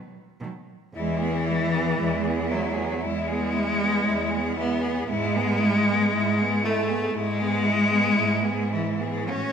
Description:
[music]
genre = classical, lyrical piece for cello ensemble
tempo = 52-60 BPM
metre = 4/4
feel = rubato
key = E major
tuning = A4 = 439 Hz
[part]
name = dark cello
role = second line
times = 0.4-9.5 s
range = F#3 to C#4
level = -31 LUFS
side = right 6 dB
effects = none
[part]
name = rich cello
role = accompaniment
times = 0.4-9.5 s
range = D#3 to C#4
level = -23 LUFS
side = left 1 dB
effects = none
[part]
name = rich cello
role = bass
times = 0.4-9.5 s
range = E2 to B2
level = -31 LUFS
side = right 3 dB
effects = none
[part]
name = rich cello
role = melody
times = 1.0-9.5 s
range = E4 to G#4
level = -32 LUFS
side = left 4 dB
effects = none
[sound]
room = moderate scoring stage reverb, RT60 1.7 s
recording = minimal, uncompressed stereo recording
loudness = -22 LUFS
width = side -7 dB against mid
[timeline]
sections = 0.9-9.5 A section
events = none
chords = 0.0 B; 0.9 E; 5.1 E/G#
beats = | 0.94 1.99 3.03 4.07 | 5.09 6.13 7.14 8.16 | 9.29

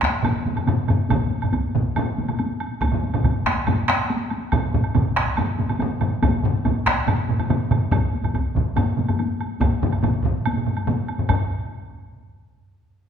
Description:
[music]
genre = japanese traditional, taiko drum ensemble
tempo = 141 BPM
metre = 4/4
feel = straight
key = none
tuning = none
[part]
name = taiko ensemble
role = percussion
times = 0.0-11.5 s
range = none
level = -27 LUFS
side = left 2 dB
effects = none
[part]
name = taiko ensemble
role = percussion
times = 0.0-11.7 s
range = none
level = -24 LUFS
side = left 3 dB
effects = none
[part]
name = taiko ensemble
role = percussion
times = 0.0-11.7 s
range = none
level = -24 LUFS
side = right 4 dB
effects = none
[part]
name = taiko ensemble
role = percussion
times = 0.0-11.5 s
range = none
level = -26 LUFS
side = equal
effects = none
[part]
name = woodblock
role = percussion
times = 0.2-11.5 s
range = none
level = -32 LUFS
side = right 5 dB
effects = none
[sound]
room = wet recital hall reverb, RT60 1.8 s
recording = minimal, uncompressed stereo recording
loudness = -19 LUFS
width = side -8 dB against mid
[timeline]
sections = 0.0-11.3 A section; 11.3-13.0 B section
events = speeding up 0.0-13.0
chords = none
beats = 0.24 0.67 | 1.10 1.53 1.96 2.39 | 2.82 3.25 3.68 4.10 | 4.53 4.96 5.38 5.81 | 6.23 6.66 7.08 7.50 | 7.93 8.35 8.77 9.19 | 9.62 10.04 10.46 10.88 | 11.29

